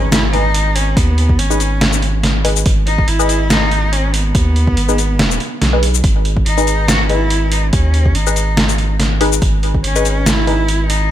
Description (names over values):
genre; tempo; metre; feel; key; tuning
deep dubstep; 142 BPM; 4/4; swing 54% on 16ths, half-time; G# minor; A4 = 437 Hz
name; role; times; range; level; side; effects
rich cello; melody; 0.0-11.1 s; B3 to F#4; -20 LUFS; equal; dub echo
filtered dub chord stab; stabs; 0.0-10.6 s; D#4 to D#5; -21 LUFS; left 3 dB; phaser, dub echo
saturated sub bass; bass; 0.0-11.1 s; G#1 to D#2; -16 LUFS; equal; none
impact; sound effects; 0.0-1.0 s; none; barely audible; none; none
trip hop sampler-style drum kit; drums; 0.1-11.0 s; hi-hat, shaker, snare drum; -18 LUFS; equal; none
electronic kick drum; drums; 1.0-9.8 s; none; -15 LUFS; equal; overdrive
room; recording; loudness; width
digital ambience; none; -12 LUFS; side -12 dB against mid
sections
0.0-11.1 A section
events
impact 0.0-1.0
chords
0.0 G#m